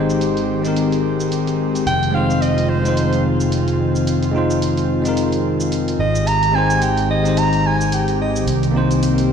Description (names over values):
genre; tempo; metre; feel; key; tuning
sunset chillout; 109 BPM; 4/4; swing 57% on 16ths; F minor; A4 = 438 Hz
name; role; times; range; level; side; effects
bell-like tine electric piano; accompaniment; 0.0-9.3 s; Ab3 to C5; -21 LUFS; left 2 dB; auto-pan, tape echo
airy breathy pad; sustained chords; 0.0-9.3 s; Eb3 to G4; -21 LUFS; left 2 dB; chorus
fingered electric bass; bass; 0.0-9.3 s; F1 to C2; -21 LUFS; right 2 dB; none
electronic shaker and hi-hat; drums; 0.1-9.3 s; none; -32 LUFS; right 3 dB; overdrive, low-pass filter on hats, small room reverb, low-pass filter on perc
mellow soprano saxophone; melody; 1.9-8.5 s; C5 to Bb5; -21 LUFS; right 2 dB; tape echo
room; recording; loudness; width
moderate lush hall reverb, RT60 1.9 s; played on a big sound system in a bare room, large studio reverb; -15 LUFS; side -7 dB against mid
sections
0.0-9.3 A section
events
none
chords
0.0 Abmaj7; 1.9 Fm7; 6.0 Abmaj7; 8.5 Cm7